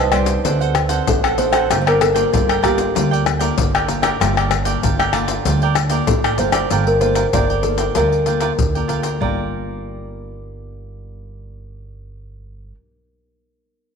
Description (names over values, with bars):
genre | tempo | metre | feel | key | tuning
samba and choro | 96 BPM | 4/4 | straight | G minor | A4 = 439 Hz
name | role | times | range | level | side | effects
kalimba | melody | 0.0-12.7 s | G4 to D5 | -20 LUFS | equal | none
cavaquinho | accompaniment | 0.0-12.8 s | D4 to A5 | -23 LUFS | right 10 dB | none
nylon-string guitar | accompaniment | 0.0-12.8 s | A2 to A4 | -27 LUFS | left 10 dB | none
upright bass | bass | 0.0-12.7 s | G1 to D2 | -22 LUFS | right 1 dB | none
pandeiro, tamborim, egg shaker and surdo | percussion | 0.1-9.4 s | none | -20 LUFS | left 6 dB | none
room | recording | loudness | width
moderate echo chamber reverb, RT60 1.7 s, studio reverb | 1960s-style stereo with parts hard left and right, faint mains hum | -15 LUFS | side -6 dB against mid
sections
0.0-6.7 A section; 6.7-9.2 B section; 9.2-11.7 C section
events
none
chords
0.4 D7; 1.7 Gm9; 9.2 Gm7